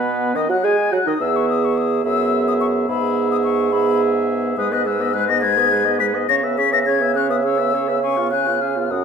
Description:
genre	quick classical-period movement for wind quintet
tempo	70 BPM (dotted quarters)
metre	6/8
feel	rubato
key	E major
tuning	A4 = 438 Hz
part	mellow hollow silver concert flute	melody	0.0-9.0 s	B5 to B6	-21 LUFS	left 8 dB	none
part	mellow oboe	second line	0.0-9.0 s	B4 to G#5	-26 LUFS	left 5 dB	none
part	mellow French horn	accompaniment	0.0-9.0 s	G#3 to G#4	-25 LUFS	left 1 dB	none
part	warm clarinet	accompaniment	0.0-9.0 s	B3 to B4	-23 LUFS	right 8 dB	none
part	warm bassoon	bass	0.0-9.0 s	E2 to G#3	-22 LUFS	right 3 dB	none
room	wet recital hall reverb, RT60 1.4 s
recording	none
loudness	-16 LUFS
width	side -6 dB against mid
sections	0.0-9.0 A section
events	none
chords	0.0 B; 1.2 E; 2.9 E/G#; 6.3 C#m7; 8.0 C#7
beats	0.36 | 1.21 2.05 | 2.89 3.73 | 4.58 5.43 | 6.29 7.15 | 8.03 8.91

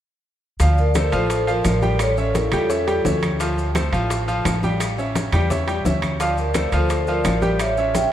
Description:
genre	latin, salsa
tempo	171 BPM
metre	4/4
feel	straight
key	D minor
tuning	A4 = 441 Hz
part	vibraphone with soft mallets	melody	0.6-3.2, 6.2-8.1 s	E4 to G5	-23 LUFS	equal	none
part	bright concert grand piano	accompaniment	0.6-8.1 s	F3 to G5	-24 LUFS	right 1 dB	none
part	upright bass	bass	0.6-8.1 s	A1 to E2	-22 LUFS	equal	none
part	bongos	percussion	0.6-8.1 s	none	-32 LUFS	left 6 dB	none
part	congas	percussion	0.6-8.1 s	none	-27 LUFS	left 1 dB	none
part	maracas	percussion	0.6-8.1 s	none	-36 LUFS	left 4 dB	none
part	timbales	percussion	0.6-8.1 s	none	-30 LUFS	right 4 dB	none
part	claves	percussion	1.0-7.8 s	none	-37 LUFS	left 2 dB	none
room	moderate cathedral reverb, RT60 5.9 s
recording	in a vast, echoing space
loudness	-18 LUFS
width	side -11 dB against mid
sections	0.6-8.1 A section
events	none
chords	0.6 Dm7; 2.0 A7; 3.4 Dm; 4.8 A7; 6.2 Dm7; 7.6 A7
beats	| 0.60 0.95 1.30 1.65 | 2.00 2.35 2.70 3.05 | 3.40 3.75 4.10 4.45 | 4.80 5.15 5.50 5.85 | 6.20 6.55 6.90 7.25 | 7.60 7.95

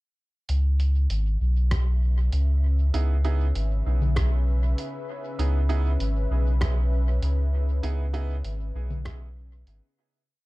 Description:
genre	ambient dub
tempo	98 BPM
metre	4/4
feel	straight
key	C# minor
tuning	A4 = 439 Hz
part	warm analog pad	sustained chords	1.2-10.3 s	C#3 to E5	-37 LUFS	left 2 dB	chorus, vintage 12-bit sampler grit
part	warm sub bass	bass	0.5-9.8 s	G#1 to C#2	-22 LUFS	equal	none
part	lo-fi sampler-style drum kit	drums	0.5-9.8 s	congas, hi-hat, rim click	-36 LUFS	left 2 dB	dub echo
part	electronic kick drum	drums	1.7-9.2 s	none	-28 LUFS	equal	none
part	bright upright piano	stabs	2.9-8.3 s	B3 to G#4	-36 LUFS	right 6 dB	dub echo
room	little or no reverb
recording	dark, warm production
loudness	-22 LUFS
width	side -20 dB against mid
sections	0.5-10.3 groove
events	fade-in on analog synth pad 0.5-10.3; fade-out 7.0-10.3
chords	0.5 C#m7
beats	| 0.49 1.10 1.71 2.33 | 2.94 3.55 4.16 4.78 | 5.39 6.00 6.61 7.22 | 7.84 8.45 9.06 9.67

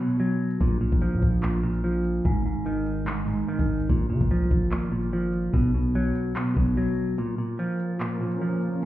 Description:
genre	hip hop, drill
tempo	146 BPM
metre	4/4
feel	half-time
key	Bb phrygian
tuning	A4 = 440 Hz
part	semi-hollow electric guitar	accompaniment	0.0-8.9 s	Ab2 to F#3	-25 LUFS	equal	none
part	drill drum kit	drums	0.1-8.9 s	handclaps, hi-hat, kick drum	-26 LUFS	equal	none
part	long sustained 808-style bass	bass	0.6-6.8 s	Ab1 to Db3	-28 LUFS	equal	none
part	granular cloud pad	sustained chords	7.8-8.9 s	F3 to Bb4	-34 LUFS	left 1 dB	built-in reverb
room	light reverb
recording	heard muffled through a wall, club reverb, EQ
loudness	-23 LUFS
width	side -14 dB against mid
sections	0.0-8.9 A section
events	break 0.0-0.6, 7.2-8.9; drums muted 6.8-7.2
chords	0.0 B5; 0.6 Bb5; 2.3 Ab5; 3.9 Bbm; 5.5 B5; 7.2 Bbm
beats	0.20 | 0.61 1.02 1.43 1.84 | 2.25 2.66 3.07 3.48 | 3.90 4.31 4.72 5.13 | 5.54 5.95 6.36 6.77 | 7.18 7.59 8.00 8.41 | 8.83

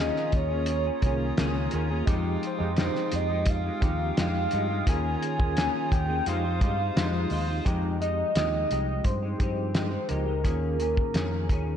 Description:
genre	indie pop, bedroom pop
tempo	86 BPM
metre	4/4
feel	straight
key	F minor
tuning	A4 = 439 Hz
part	soft octave-layered synth lead	melody	0.0-11.8 s	Bb4 to Ab5	-30 LUFS	equal	lush chorus, analog delay
part	bright tine electric piano	accompaniment	0.0-11.8 s	Ab3 to Ab4	-35 LUFS	right 4 dB	medium tremolo
part	semi-hollow electric guitar	accompaniment	0.0-11.8 s	Eb3 to C5	-32 LUFS	left 4 dB	analog chorus, warbly pitch drift
part	pipe organ, clarinet reed	sustained chords	0.0-7.6 s	F4 to Eb6	-39 LUFS	right 3 dB	none
part	vintage muted fingered electric bass	bass	0.0-11.8 s	C2 to G2	-30 LUFS	equal	none
part	cloth-damped thuddy drum kit	drums	0.2-11.7 s	hi-hat, kick drum, snare drum	-28 LUFS	equal	vintage 12-bit sampler grit
room	moderate lush hall reverb, RT60 1.6 s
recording	dreamy mix soaked in reverb, cassette tape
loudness	-24 LUFS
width	side -9 dB against mid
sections	0.0-7.7 A section; 7.7-11.8 B section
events	none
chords	0.0 Eb7sus4; 2.1 Fm9; 4.9 Eb7sus4; 6.3 Fm7; 7.7 Fm9; 10.4 Eb7sus4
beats	0.68 1.38 | 2.08 2.77 3.47 4.17 | 4.87 5.56 6.26 6.96 | 7.66 8.35 9.05 9.75 | 10.45 11.14

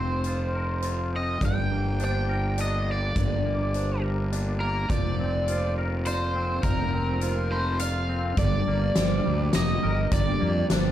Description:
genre	post-rock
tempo	103 BPM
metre	3/4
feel	straight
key	G minor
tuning	A4 = 440 Hz
part	cranked stack guitar	melody	0.0-10.7 s	Bb4 to G5	-30 LUFS	equal	overdrive, slapback echo
part	twangy electric guitar	arpeggios	0.0-10.9 s	G2 to Bb4	-33 LUFS	left 3 dB	ensemble chorus, slapback echo
part	fuzz fingered electric bass	bass	0.0-10.9 s	F1 to F2	-27 LUFS	equal	overdrive
part	huge arena drum kit	drums	0.2-10.8 s	hi-hat, kick drum, snare drum	-28 LUFS	equal	none
part	dark studio string section	sustained chords	1.4-10.9 s	C3 to G4	-39 LUFS	equal	none
part	felt-muted upright piano	arpeggios	1.4-10.9 s	C5 to D6	-38 LUFS	right 7 dB	slapback echo
room	studio reverb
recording	dark, warm production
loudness	-23 LUFS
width	side -12 dB against mid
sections	0.0-8.4 A section; 8.4-10.9 B section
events	none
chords	0.0 Fsus4; 1.4 Gm; 4.9 Fsus4; 8.4 Gm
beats	0.25 0.83 | 1.42 2.00 2.58 | 3.16 3.74 4.32 | 4.90 5.48 6.06 | 6.64 7.22 7.81 | 8.39 8.97 9.55 | 10.13 10.71

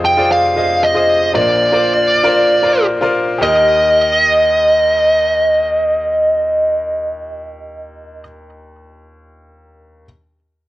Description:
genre	pop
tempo	116 BPM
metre	4/4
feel	straight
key	Eb major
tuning	A4 = 441 Hz
part	fuzz lead guitar	melody	0.0-8.2 s	D5 to G5	-12 LUFS	right 1 dB	distortion, cassette tape
part	clear baby grand piano	accompaniment	0.0-10.1 s	F1 to Eb5	-18 LUFS	left 2 dB	cassette tape
room	moderate spring reverb, RT60 1.3 s, small room ambience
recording	home recording on cassette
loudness	-11 LUFS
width	side -16 dB against mid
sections	0.0-3.4 A section; 3.4-7.5 B section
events	none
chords	0.0 Fm7; 1.3 Bbadd9; 3.4 Eb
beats	0.31 0.82 | 1.34 1.86 2.37 2.89 | 3.41 3.92 4.44 4.96 | 5.47 5.99 6.50 7.02

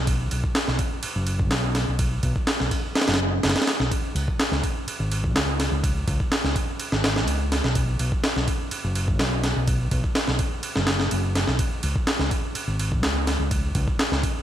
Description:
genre	breakbeat, breaks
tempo	125 BPM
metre	4/4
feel	straight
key	unclear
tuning	A4 = 440 Hz
part	fingered electric bass	bass	0.0-14.2 s	F#1 to C#2	-25 LUFS	equal	none
part	breakbeat sampler-style drum kit	drums	0.1-14.4 s	kick drum, ride cymbal, snare drum	-23 LUFS	equal	none
room	little or no reverb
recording	vinyl crackle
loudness	-21 LUFS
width	side -11 dB against mid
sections	0.0-14.4 A section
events	none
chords	none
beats	| 0.08 0.56 1.04 1.52 | 2.00 2.48 2.96 3.44 | 3.92 4.40 4.88 5.36 | 5.84 6.32 6.80 7.28 | 7.76 8.24 8.72 9.20 | 9.68 10.16 10.64 11.12 | 11.60 12.08 12.56 13.04 | 13.52 14.00

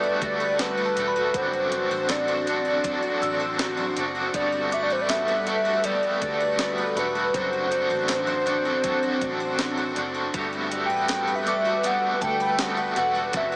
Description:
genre	dream pop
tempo	80 BPM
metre	4/4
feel	straight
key	G major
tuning	A4 = 440 Hz
part	warbly nostalgic lead	melody	0.0-13.6 s	B4 to G5	-25 LUFS	equal	chorus, tremolo, digital delay
part	cranked stack guitar	accompaniment	0.0-13.6 s	F#2 to A4	-27 LUFS	equal	overdrive, tremolo, lush chorus
part	ethereal airy pad	sustained chords	0.0-13.6 s	G3 to B4	-32 LUFS	equal	ensemble chorus, built-in reverb
part	picked twelve-string acoustic guitar	arpeggios	0.0-13.6 s	F#3 to C5	-31 LUFS	left 1 dB	ensemble chorus, digital delay
part	vintage muted fingered electric bass	bass	0.0-13.6 s	E1 to D2	-43 LUFS	equal	none
part	glassy synth bell	texture	0.0-13.6 s	F#5 to F#6	-36 LUFS	equal	none
part	clean 12-bit digital drum machine	drums	0.2-13.5 s	hi-hat, kick drum, snare drum, tambourine	-29 LUFS	equal	none
room	moderate huge ambient reverb, RT60 5.8 s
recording	small speaker sound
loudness	-22 LUFS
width	side -25 dB against mid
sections	0.0-13.6 A section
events	none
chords	0.0 Gmaj9; 1.3 D7/F#; 4.3 Gmaj9; 7.3 D7/F#; 10.3 Gmaj9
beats	0.59 | 1.34 2.09 2.84 3.59 | 4.34 5.09 5.84 6.59 | 7.34 8.09 8.84 9.59 | 10.34 11.09 11.84 12.59 | 13.34

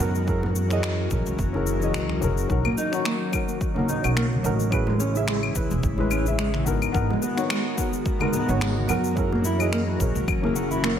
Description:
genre	sunset chillout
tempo	108 BPM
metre	4/4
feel	swing 55% on 16ths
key	unclear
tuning	A4 = 437 Hz
part	dark grand piano	accompaniment	0.0-11.0 s	B3 to E5	-28 LUFS	moving between left 7 dB and right 6 dB	auto-pan, analog delay
part	airy breathy pad	sustained chords	0.0-11.0 s	C#3 to A#4	-30 LUFS	left 1 dB	chorus, vintage 12-bit sampler grit
part	upright bass	bass	0.0-11.0 s	E1 to F#2	-26 LUFS	equal	none
part	electronic cabasa, finger snaps and claves	drums	0.0-11.0 s	none	-31 LUFS	left 4 dB	overdrive
part	congas	percussion	0.0-10.8 s	none	-33 LUFS	left 2 dB	none
part	electronic kick drum	drums	0.3-10.4 s	none	-28 LUFS	equal	overdrive
part	mellow electric guitar	arpeggios	2.7-11.0 s	G#3 to F#4	-28 LUFS	right 2 dB	spring reverb, analog delay
room	moderate plate reverb, RT60 1.5 s, small room reverb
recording	dreamy mix soaked in reverb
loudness	-21 LUFS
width	side -9 dB against mid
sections	0.0-11.0 A section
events	none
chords	0.3 F#7; 2.5 Bmaj7; 4.7 Amaj7; 6.7 G#m9; 9.2 F#7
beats	| 0.28 0.83 1.39 1.95 | 2.50 3.06 3.61 4.17 | 4.72 5.28 5.83 6.39 | 6.95 7.50 8.06 8.61 | 9.17 9.72 10.28 10.84

